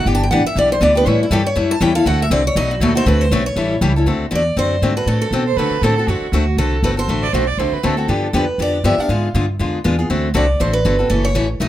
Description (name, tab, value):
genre	acoustic string swing (jazz manouche)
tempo	239 BPM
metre	4/4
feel	swing 56% on 8ths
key	D mixolydian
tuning	A4 = 441 Hz
part	picked steel-string acoustic guitar	melody	0.0-11.7 s	E4 to A5	-20 LUFS	right 1 dB	plate reverb
part	picked steel-string acoustic guitar	accompaniment	0.0-11.7 s	B2 to A4	-19 LUFS	left 3 dB	none
part	upright bass	bass	0.0-11.7 s	F#1 to C3	-18 LUFS	equal	none
part	warm violin	second line	5.5-8.3 s	F#4 to D5	-22 LUFS	right 8 dB	none
room	light reverb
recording	none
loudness	-14 LUFS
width	side -13 dB against mid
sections	0.0-4.1 A section; 4.1-11.7 B section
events	steel-string acoustic guitar solo 0.0-4.1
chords	0.1 Em7; 1.1 A7; 2.1 D7; 2.6 B7; 3.1 D7; 3.6 A7; 4.1 D7; 8.1 G7; 9.1 G#dim7; 10.1 D7; 11.1 F#m7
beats	| 0.06 0.31 0.56 0.81 | 1.06 1.31 1.56 1.81 | 2.06 2.31 2.56 2.81 | 3.06 3.31 3.56 3.81 | 4.07 4.32 4.57 4.82 | 5.07 5.32 5.57 5.82 | 6.08 6.33 6.58 6.83 | 7.08 7.33 7.58 7.83 | 8.09 8.34 8.59 8.84 | 9.09 9.34 9.59 9.85 | 10.10 10.35 10.60 10.85 | 11.10 11.35 11.60